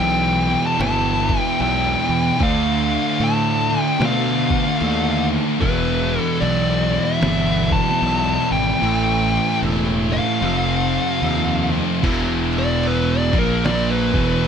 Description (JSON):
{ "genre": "stoner and doom metal", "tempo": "75 BPM", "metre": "4/4", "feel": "swing 62% on 8ths", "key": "E phrygian", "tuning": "A4 = 444 Hz", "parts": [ { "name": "fuzz lead guitar", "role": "melody", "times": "0.0-14.5 s", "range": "A#4 to A5", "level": "-22 LUFS", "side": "left 2 dB", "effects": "distortion, digital delay" }, { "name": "fuzz guitar", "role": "riff", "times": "0.0-14.5 s", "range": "E2 to D4", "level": "-25 LUFS", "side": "left 11 dB", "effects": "distortion" }, { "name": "heavy high-gain guitar", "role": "riff", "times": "0.0-14.5 s", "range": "E2 to F4", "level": "-26 LUFS", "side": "left 2 dB", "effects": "distortion" }, { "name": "thick fuzz guitar", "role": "riff", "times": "0.0-14.5 s", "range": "E2 to D4", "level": "-23 LUFS", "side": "right 11 dB", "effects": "distortion" }, { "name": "fuzz fingered electric bass", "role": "bass", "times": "0.0-14.5 s", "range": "E1 to B2", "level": "-24 LUFS", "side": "equal", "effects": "overdrive" }, { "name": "lo-fi sampler-style drum kit", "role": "drums", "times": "0.0-14.5 s", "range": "crash cymbal, kick drum, snare drum", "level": "-28 LUFS", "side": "equal", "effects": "none" } ], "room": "light reverb, digital ambience", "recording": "none", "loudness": "-16 LUFS", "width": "side -7 dB against mid", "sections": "0.0-12.0 A section; 12.0-14.5 B section", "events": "kick and snare drop out 8.8-12.0; lead electric guitar solo 12.0-14.5", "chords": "0.0 Em; 2.4 Dm; 5.6 Em; 8.8 Am; 10.4 F; 12.0 E5; 13.2 A#5" }